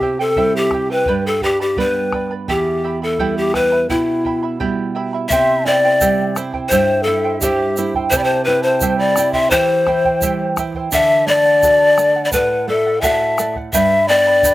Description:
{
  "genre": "andean folk, Andean ensemble",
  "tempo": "85 BPM",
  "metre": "2/4",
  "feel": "straight",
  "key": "unclear",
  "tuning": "A4 = 440 Hz",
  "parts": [
    { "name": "breathy large pan pipes", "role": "melody", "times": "0.0-14.5 s", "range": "E4 to E5", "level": "-14 LUFS", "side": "left 2 dB", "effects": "slapback echo" },
    { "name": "charango", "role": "accompaniment", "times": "0.0-14.5 s", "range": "E4 to B5", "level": "-24 LUFS", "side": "right 5 dB", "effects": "slapback echo" },
    { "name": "nylon-string guitar", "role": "accompaniment", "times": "0.0-14.5 s", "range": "E2 to F#4", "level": "-23 LUFS", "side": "right 4 dB", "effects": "slapback echo" },
    { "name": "bombo", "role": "percussion", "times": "0.0-14.5 s", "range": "none", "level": "-28 LUFS", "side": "equal", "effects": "none" },
    { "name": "breathy mellow large quena", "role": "second line", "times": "5.3-14.5 s", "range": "C5 to C6", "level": "-27 LUFS", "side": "left 1 dB", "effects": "slapback echo" },
    { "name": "tube shaker", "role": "percussion", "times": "5.3-14.5 s", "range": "none", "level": "-24 LUFS", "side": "right 5 dB", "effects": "none" }
  ],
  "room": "little or no reverb",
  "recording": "recorded outdoors, with no room sound",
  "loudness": "-14 LUFS",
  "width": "side -16 dB against mid",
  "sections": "0.0-5.3 A section; 5.3-14.5 B section",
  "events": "none",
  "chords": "0.0 C; 1.1 G; 2.5 Em; 5.3 C; 10.9 D; 13.7 G"
}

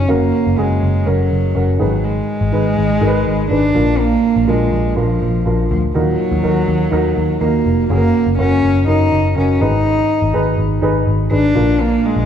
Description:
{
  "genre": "piano-driven pop",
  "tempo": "123 BPM",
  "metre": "4/4",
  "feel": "straight",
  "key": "unclear",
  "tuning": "A4 = 440 Hz",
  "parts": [
    { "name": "warm cello", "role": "melody", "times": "0.0-12.3 s", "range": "F3 to Eb4", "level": "-17 LUFS", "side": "equal", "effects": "digital delay" },
    { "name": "dark upright piano", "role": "accompaniment", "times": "0.0-12.3 s", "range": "Ab2 to Cb5", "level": "-19 LUFS", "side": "right 1 dB", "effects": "none" },
    { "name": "vintage muted picked electric bass", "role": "bass", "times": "0.0-12.3 s", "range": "F1 to Eb2", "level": "-17 LUFS", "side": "equal", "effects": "none" }
  ],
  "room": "wet large studio reverb, RT60 1.3 s",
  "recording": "band playing live in one room",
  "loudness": "-13 LUFS",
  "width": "side -8 dB against mid",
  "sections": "0.1-12.3 A section",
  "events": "none",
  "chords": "0.1 Gb; 1.8 Abm; 3.8 Bb; 6.0 Ebm; 7.9 Gb; 9.6 Abm; 11.6 Bb"
}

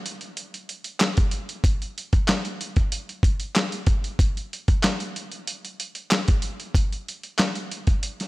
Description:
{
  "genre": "hip hop",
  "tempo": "94 BPM",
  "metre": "4/4",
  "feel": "swing 54% on 16ths",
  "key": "none",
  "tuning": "none",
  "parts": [
    { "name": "dusty soul sampler-style drum kit", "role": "drums", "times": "0.1-8.3 s", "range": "handclaps, hi-hat, kick drum, snare drum", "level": "-22 LUFS", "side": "equal", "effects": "none" }
  ],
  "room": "light reverb, digital ambience",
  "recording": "none",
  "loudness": "-22 LUFS",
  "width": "side -20 dB against mid",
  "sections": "0.0-8.3 A section",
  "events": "none",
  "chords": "none"
}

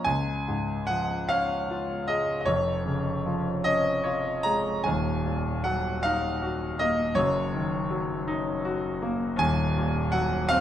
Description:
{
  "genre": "classical, romantic nocturne for solo piano",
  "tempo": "47-55 BPM (dotted quarters)",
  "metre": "6/8",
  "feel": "rubato",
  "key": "Db major",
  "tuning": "A4 = 441 Hz",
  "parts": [
    { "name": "clear concert grand piano", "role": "solo", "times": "0.0-10.6 s", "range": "Eb1 to Bb5", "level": "-24 LUFS", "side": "equal", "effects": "none" }
  ],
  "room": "wet recital hall reverb, RT60 1.4 s",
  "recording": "lossy compression artefacts",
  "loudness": "-24 LUFS",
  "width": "side -10 dB against mid",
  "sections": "0.1-10.6 A section",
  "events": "none",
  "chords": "0.1 Db; 2.5 Db/F; 4.8 Ebm; 7.2 Ebm/Gb; 9.4 Cm7b5/Eb (rootless)"
}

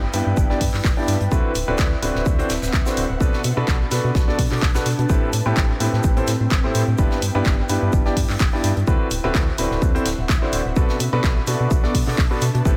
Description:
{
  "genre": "piano house",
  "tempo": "127 BPM",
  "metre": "4/4",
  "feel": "swing 54% on 16ths",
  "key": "unclear",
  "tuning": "A4 = 440 Hz",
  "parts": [
    { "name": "organ-like FM bass", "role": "bass", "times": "0.0-12.7 s", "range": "D1 to B2", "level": "-25 LUFS", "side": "equal", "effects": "sidechain pumping" },
    { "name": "ethereal airy pad", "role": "texture", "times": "0.0-12.8 s", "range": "C4 to A5", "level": "-32 LUFS", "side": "equal", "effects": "ensemble chorus, built-in reverb, sidechain pumping" },
    { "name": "clear grand piano", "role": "riff", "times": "0.1-12.8 s", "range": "G2 to D5", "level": "-26 LUFS", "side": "equal", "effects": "sidechain pumping, diffuse ambient delay" },
    { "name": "house drum kit", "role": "drums", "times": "0.1-12.5 s", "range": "handclaps, hi-hat", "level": "-31 LUFS", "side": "equal", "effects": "none" },
    { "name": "huge arena drum kit", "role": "drums", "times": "0.1-12.8 s", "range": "hi-hat, shaker, snare drum", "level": "-38 LUFS", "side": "equal", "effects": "sidechain pumping on hats, high-pass filter on hats, high-pass filter on snare, sidechain pumping on perc, high-pass filter on perc, high-pass filter on room" },
    { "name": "electronic kick drum", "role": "drums", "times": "0.4-12.8 s", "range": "none", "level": "-22 LUFS", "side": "equal", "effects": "none" }
  ],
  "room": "light reverb, small room ambience",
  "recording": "none",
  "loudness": "-20 LUFS",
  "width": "mono",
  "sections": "0.0-12.8 A section",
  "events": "none",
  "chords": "0.0 G6; 1.3 D13; 3.2 Bm7; 5.1 Am9; 7.0 G6; 8.9 D13; 10.8 Bm7"
}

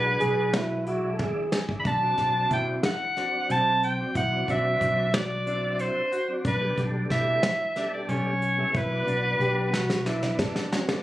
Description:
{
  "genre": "progressive instrumental, band music in an uneven meter",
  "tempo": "183 BPM (eighths)",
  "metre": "7/8",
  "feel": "straight",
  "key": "B minor",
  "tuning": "A4 = 439 Hz",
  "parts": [
    { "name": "warm soprano saxophone", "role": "melody", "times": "0.0-10.1 s", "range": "B4 to B5", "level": "-26 LUFS", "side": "equal", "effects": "none" },
    { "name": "tonewheel organ", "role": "accompaniment", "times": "0.0-11.0 s", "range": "B2 to A4", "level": "-35 LUFS", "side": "equal", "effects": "chorus vibrato, slow rotary speaker" },
    { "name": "bright baby grand piano", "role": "arpeggios", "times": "0.0-11.0 s", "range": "C4 to G#4", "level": "-35 LUFS", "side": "left 1 dB", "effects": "none" },
    { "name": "mellow fretless electric bass", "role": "bass", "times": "0.0-10.5 s", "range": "B1 to B2", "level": "-29 LUFS", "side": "equal", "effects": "none" },
    { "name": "warm trombone", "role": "second line", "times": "0.2-1.6, 9.4-11.0 s", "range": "D4 to A4", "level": "-29 LUFS", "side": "right 1 dB", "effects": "none" },
    { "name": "soft brush drum kit", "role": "drums", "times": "0.2-11.0 s", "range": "hi-hat, kick drum, snare drum, toms", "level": "-29 LUFS", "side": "equal", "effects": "none" }
  ],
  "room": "studio reverb",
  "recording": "recorded on a phone in the room, studio ambience, compression",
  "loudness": "-23 LUFS",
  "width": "side -14 dB against mid",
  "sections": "0.0-11.0 A section",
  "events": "drum fill 1.2-1.9, 9.7-11.0",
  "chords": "0.0 E7/B; 1.9 D7/B; 6.4 Gadd9/B; 8.7 Bm"
}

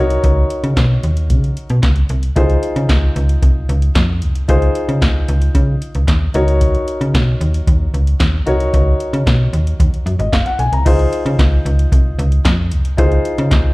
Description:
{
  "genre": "early-eighties boogie funk",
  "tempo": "113 BPM",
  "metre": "4/4",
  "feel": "straight",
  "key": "Db major",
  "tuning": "A4 = 440 Hz",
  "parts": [
    { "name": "warm grand piano", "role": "accompaniment", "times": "0.0-13.7 s", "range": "Eb4 to Bb5", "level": "-20 LUFS", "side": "left 1 dB", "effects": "slapback echo" },
    { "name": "slap-like FM bass", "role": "bass", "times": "0.0-13.7 s", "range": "Gb1 to Db3", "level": "-15 LUFS", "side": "equal", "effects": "none" },
    { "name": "electro analog drum machine", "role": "drums", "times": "0.1-13.6 s", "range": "crash cymbal, handclaps, hi-hat, kick drum, snare drum", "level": "-16 LUFS", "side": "equal", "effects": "none" }
  ],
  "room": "digital ambience",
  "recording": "live gig heard through the venue's PA, club ambience",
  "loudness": "-12 LUFS",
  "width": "side -22 dB against mid",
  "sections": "0.0-10.9 A section; 10.9-13.7 B section",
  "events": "none",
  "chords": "0.0 Cbmaj7; 2.4 Dbmaj9; 6.3 Cbmaj7 (rootless); 10.9 Dbmaj9"
}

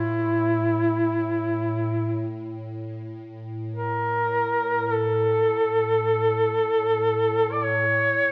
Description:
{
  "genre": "caucasian folk, Caucasian lament",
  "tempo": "free time",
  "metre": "none",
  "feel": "none",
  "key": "A major",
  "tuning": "A4 = 445 Hz",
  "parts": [
    { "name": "warm duduk", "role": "melody", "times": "0.0-8.3 s", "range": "E4 to D5", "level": "-24 LUFS", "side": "equal", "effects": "none" },
    { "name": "evolving wavetable pad", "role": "drone", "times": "0.0-8.3 s", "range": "A2", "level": "-32 LUFS", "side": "equal", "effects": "chorus, built-in reverb" }
  ],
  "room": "wet church reverb, RT60 2.7 s",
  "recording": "nothing above 10.7 kHz",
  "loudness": "-23 LUFS",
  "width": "mono",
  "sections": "0.0-8.3 A section",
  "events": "none",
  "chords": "none"
}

